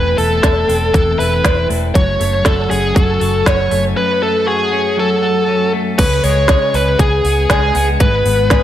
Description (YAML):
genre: jangly indie pop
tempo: 119 BPM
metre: 4/4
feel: straight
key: unclear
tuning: A4 = 440 Hz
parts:
  - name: bluesy overdriven lead guitar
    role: melody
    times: 0.0-8.6 s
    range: G#4 to C#5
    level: -15 LUFS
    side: equal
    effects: distortion, slapback echo
  - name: twelve-string electric guitar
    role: arpeggios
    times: 0.0-8.6 s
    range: E2 to G#4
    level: -19 LUFS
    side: left 3 dB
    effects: harmonic tremolo, slapback echo
  - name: vintage muted fingered electric bass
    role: bass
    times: 0.0-8.6 s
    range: E1 to C#2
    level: -18 LUFS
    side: equal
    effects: none
  - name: organic electronic drum kit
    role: drums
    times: 0.2-8.6 s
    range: crash cymbal, hi-hat, kick drum, snare drum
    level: -16 LUFS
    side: equal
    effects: overdrive
room: moderate lush hall reverb, RT60 1.9 s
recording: big arena sound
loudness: -12 LUFS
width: side -11 dB against mid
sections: 0.0-6.0 A section; 6.0-8.6 B section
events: none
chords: 0.0 Amadd9/E; 1.9 F#m; 6.0 C#5; 8.0 G#m